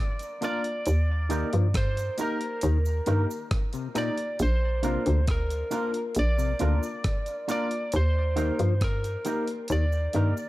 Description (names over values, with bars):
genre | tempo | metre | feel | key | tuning
roots reggae | 68 BPM | 4/4 | straight | unclear | A4 = 440 Hz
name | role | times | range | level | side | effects
lightly driven lead guitar | melody | 0.0-10.5 s | Bb4 to D5 | -32 LUFS | equal | dub echo
breakbeat sampler-style drum kit | drums | 0.2-10.3 s | hi-hat, kick drum, rim click | -30 LUFS | equal | none
cabasa | percussion | 0.2-10.5 s | none | -47 LUFS | right 5 dB | none
electric guitar with an envelope filter | accompaniment | 0.4-10.3 s | D4 to Bb4 | -36 LUFS | right 5 dB | dub echo
warm upright piano | stabs | 0.4-10.4 s | Bb3 to Bb4 | -34 LUFS | left 3 dB | none
hollow knocking FM bass | bass | 0.9-10.3 s | Bb1 to G2 | -24 LUFS | equal | none
mellow clav | arpeggios | 1.3-10.3 s | Bb2 to F3 | -34 LUFS | left 7 dB | none
room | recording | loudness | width
little or no reverb | dark, warm production | -24 LUFS | side -17 dB against mid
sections
0.0-10.5 A section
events
none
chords
0.0 Bb; 0.9 Eb; 4.4 Bb; 7.9 Eb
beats
| 0.86 1.74 2.63 3.51 | 4.39 5.28 6.16 7.05 | 7.93 8.82 9.70